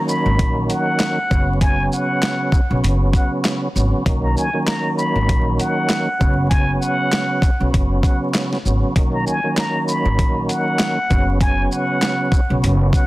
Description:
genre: hip hop, boom-bap hip-hop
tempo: 98 BPM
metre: 4/4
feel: swing 57% on 16ths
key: B major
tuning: A4 = 439 Hz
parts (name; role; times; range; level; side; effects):
- trumpet with plunger mute; melody; 0.0-13.1 s; F#5 to B5; -23 LUFS; equal; high-pass filter, low-pass filter, digital delay
- tonewheel organ; accompaniment; 0.0-13.1 s; C#3 to C#4; -21 LUFS; right 1 dB; chorus vibrato, stopped rotary speaker, cassette tape, high-pass filter, low-pass filter
- boom bap sampler-style drum kit; drums; 0.1-13.1 s; handclaps, hi-hat, kick drum, shaker, snare drum; -18 LUFS; equal; none
- upright bass; bass; 0.3-12.9 s; F#1 to B1; -19 LUFS; equal; none
room: digital ambience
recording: dense, heavily limited modern master, vinyl crackle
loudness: -16 LUFS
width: side -18 dB against mid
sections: 0.0-13.1 A section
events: none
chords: 0.0 Bmaj7; 1.3 F#sus4; 4.1 Bmaj7; 6.2 F#sus4; 9.0 Bmaj7; 11.1 F#sus4

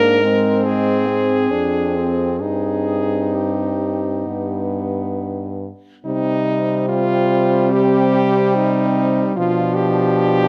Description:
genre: classical, lyrical piece for horn quartet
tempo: 64-75 BPM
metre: 4/4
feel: rubato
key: C minor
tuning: A4 = 440 Hz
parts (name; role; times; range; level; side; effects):
- clear French horn; melody; 0.0-10.5 s; Eb4 to Bb4; -22 LUFS; equal; none
- mellow French horn; second line; 0.0-10.5 s; Ab3 to D4; -25 LUFS; equal; none
- clear French horn; accompaniment; 0.0-10.5 s; F3 to Eb4; -24 LUFS; equal; none
- mellow French horn; bass; 0.0-10.5 s; F2 to C3; -25 LUFS; equal; none
room: light reverb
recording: close, detailed microphones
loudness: -18 LUFS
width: mono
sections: 0.0-6.0 A section; 6.0-10.5 B section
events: none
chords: 0.0 Fm/Ab; 2.4 Cm/G; 6.0 Cm; 9.4 G7/B

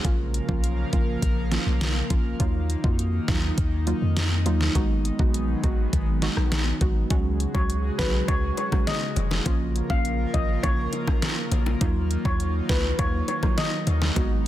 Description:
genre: dancehall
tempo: 102 BPM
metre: 4/4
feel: straight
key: Eb minor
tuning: A4 = 441 Hz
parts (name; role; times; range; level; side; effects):
- soft round pluck; accompaniment; 0.0-14.5 s; F3 to Gb4; -31 LUFS; right 3 dB; chorus, sidechain pumping
- airy breathy pad; sustained chords; 0.0-14.5 s; Db3 to F5; -31 LUFS; left 1 dB; chorus, sidechain pumping
- punchy sub bass; bass; 0.0-14.5 s; F1 to F2; -25 LUFS; equal; none
- pop drum kit; drums; 0.0-14.3 s; hi-hat, kick drum, rim click, snare drum; -25 LUFS; equal; overdrive
- bongos; percussion; 7.1-14.3 s; none; -36 LUFS; left 7 dB; none
- steel pan; melody; 7.5-14.0 s; Cb5 to F5; -30 LUFS; left 2 dB; digital delay
room: digital ambience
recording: dense, heavily limited modern master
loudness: -22 LUFS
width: side -13 dB against mid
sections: 0.0-7.1 A section; 7.1-14.5 B section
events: none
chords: 0.0 Bbm; 2.4 Ebmadd9; 4.8 Abm7; 7.1 Dbsus4; 9.5 Bbm; 11.8 Ebmadd9

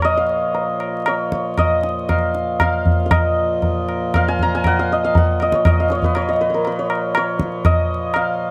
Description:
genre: indian classical, Hindustani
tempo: 118 BPM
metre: 3/4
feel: straight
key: Bb raga bhairavi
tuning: A4 = 441 Hz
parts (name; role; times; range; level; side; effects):
- santur; melody; 0.0-8.5 s; Bb4 to Bb5; -21 LUFS; equal; none
- pedal harmonium; drone; 0.0-8.5 s; Bb2 to F3; -29 LUFS; equal; none
- tabla; percussion; 0.0-8.3 s; none; -21 LUFS; equal; none
room: light reverb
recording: vinyl crackle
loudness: -18 LUFS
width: mono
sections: 0.0-3.1 A section; 3.1-8.5 B section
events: speeding up 0.0-8.5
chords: none

